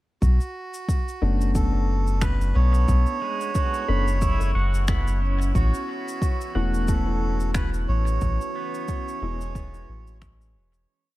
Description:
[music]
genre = ambient dub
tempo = 90 BPM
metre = 4/4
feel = swing 57% on 16ths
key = B dorian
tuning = A4 = 440 Hz
[part]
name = melodica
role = melody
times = 0.2-10.2 s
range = F#4 to C#5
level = -31 LUFS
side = right 5 dB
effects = tape echo
[part]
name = deep dark ambient pad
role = sustained chords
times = 2.7-10.9 s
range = E3 to A5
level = -40 LUFS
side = left 1 dB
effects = chorus, built-in reverb
[part]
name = soft dub sub bass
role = bass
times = 0.2-10.9 s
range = E1 to B1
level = -22 LUFS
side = equal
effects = tube saturation
[part]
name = cabasa and finger snaps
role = drums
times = 0.2-10.9 s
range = none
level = -37 LUFS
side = left 1 dB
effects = dub echo
[part]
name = electronic kick drum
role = drums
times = 0.2-10.4 s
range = none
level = -25 LUFS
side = equal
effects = none
[part]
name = dark upright piano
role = stabs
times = 1.2-9.4 s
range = G#3 to A4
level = -32 LUFS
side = left 4 dB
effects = low-pass filter, dub echo
[part]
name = pedal steel guitar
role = arpeggios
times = 2.6-11.2 s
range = G#3 to C#6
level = -34 LUFS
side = right 1 dB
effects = tape echo
[sound]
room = studio ambience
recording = none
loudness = -21 LUFS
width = side -17 dB against mid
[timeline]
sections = 0.2-10.9 groove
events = fade-in on ambient pad 0.2-10.9; fade-out 7.3-10.9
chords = 0.2 Bm9; 5.6 Amaj7

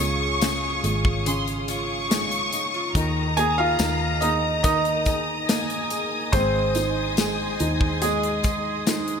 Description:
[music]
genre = pop ballad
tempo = 71 BPM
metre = 4/4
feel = straight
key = Ab major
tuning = A4 = 440 Hz
[part]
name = clear concert grand piano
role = melody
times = 0.0-9.2 s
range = Ab3 to Ab5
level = -25 LUFS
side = right 1 dB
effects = none
[part]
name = clear studio violin section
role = second line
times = 0.0-9.2 s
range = Ab5 to Db6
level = -29 LUFS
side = left 2 dB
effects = none
[part]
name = felt-muted upright piano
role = accompaniment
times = 0.0-9.2 s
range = Db3 to Eb4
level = -31 LUFS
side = right 4 dB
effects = none
[part]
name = rich studio string section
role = sustained chords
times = 0.0-9.2 s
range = Ab4 to Eb6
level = -32 LUFS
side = left 1 dB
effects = none
[part]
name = nylon-string guitar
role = arpeggios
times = 0.0-9.2 s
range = Ab2 to Bb4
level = -33 LUFS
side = left 1 dB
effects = analog chorus, digital delay
[part]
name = vintage muted fingered electric bass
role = bass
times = 0.0-9.2 s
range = Ab1 to Eb2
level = -29 LUFS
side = equal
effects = none
[part]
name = tambourine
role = percussion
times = 0.0-9.1 s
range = none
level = -37 LUFS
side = left 6 dB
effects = none
[part]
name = modern studio drum kit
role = drums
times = 0.4-9.2 s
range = hi-hat, kick drum, snare drum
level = -26 LUFS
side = left 1 dB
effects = none
[sound]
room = moderate lush hall reverb, RT60 2.9 s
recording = bright 1980s-style digital production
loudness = -21 LUFS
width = side -6 dB against mid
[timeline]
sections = 0.0-9.2 A section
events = none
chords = 0.0 Dbadd9; 3.0 Ebsus4; 6.3 Ab

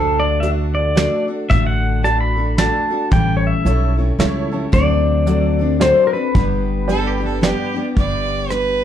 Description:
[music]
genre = honky-tonk and classic country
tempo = 112 BPM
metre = 3/4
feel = swing 60% on 8ths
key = G major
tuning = A4 = 442 Hz
[part]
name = pedal steel guitar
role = melody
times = 0.0-7.4 s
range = A4 to B5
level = -19 LUFS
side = left 2 dB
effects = none
[part]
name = picked steel-string acoustic guitar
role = accompaniment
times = 0.0-8.8 s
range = G2 to A4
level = -22 LUFS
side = left 4 dB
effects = none
[part]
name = upright bass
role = bass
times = 0.0-8.8 s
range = G1 to D2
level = -19 LUFS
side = equal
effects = none
[part]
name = honky-tonk upright piano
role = accompaniment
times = 0.4-7.9 s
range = E4 to A5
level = -26 LUFS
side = right 5 dB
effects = none
[part]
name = soft brush drum kit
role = drums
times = 0.4-8.7 s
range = hi-hat, kick drum, rim click, snare drum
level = -19 LUFS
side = right 1 dB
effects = none
[part]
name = clear fiddle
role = second line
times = 6.9-8.8 s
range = G4 to D5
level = -21 LUFS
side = right 4 dB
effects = none
[sound]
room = moderate studio reverb, RT60 0.7 s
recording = dark, warm production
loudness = -15 LUFS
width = side -10 dB against mid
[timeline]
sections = 0.0-8.0 A section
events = honky-tonk piano fill 3.9-4.7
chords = 0.0 D; 3.1 A7; 4.7 D7; 6.3 G

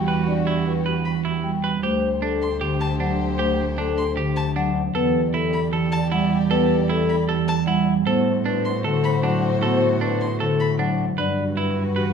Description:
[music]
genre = classical, minimalist pattern music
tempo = 154 BPM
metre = 4/4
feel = straight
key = unclear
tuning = A4 = 440 Hz
[part]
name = vibraphone with soft mallets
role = melody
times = 0.0-12.1 s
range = G4 to G5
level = -26 LUFS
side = left 8 dB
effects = none
[part]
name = marimba with soft mallets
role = accompaniment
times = 0.0-12.1 s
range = D3 to D4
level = -24 LUFS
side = right 2 dB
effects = none
[part]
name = warm studio violin section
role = sustained chords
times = 0.0-12.1 s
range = F#4 to D5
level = -31 LUFS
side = left 4 dB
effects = none
[part]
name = rich cello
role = bass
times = 0.0-12.1 s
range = D2 to A2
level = -25 LUFS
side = right 4 dB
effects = none
[part]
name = semi-hollow electric guitar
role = arpeggios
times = 0.1-12.1 s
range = D4 to B4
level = -29 LUFS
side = right 4 dB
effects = none
[part]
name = warm violin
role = arpeggios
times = 1.1-10.7 s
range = A5 to C6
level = -32 LUFS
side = left 3 dB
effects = none
[sound]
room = wet large studio reverb, RT60 1.2 s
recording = heard from further back in the room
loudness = -19 LUFS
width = side -6 dB against mid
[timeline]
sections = 0.0-1.8 A section; 1.8-12.1 B section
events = none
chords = 0.0 Emadd9; 1.8 D7sus4; 4.9 Em11; 8.1 Am69; 11.2 Gmaj7

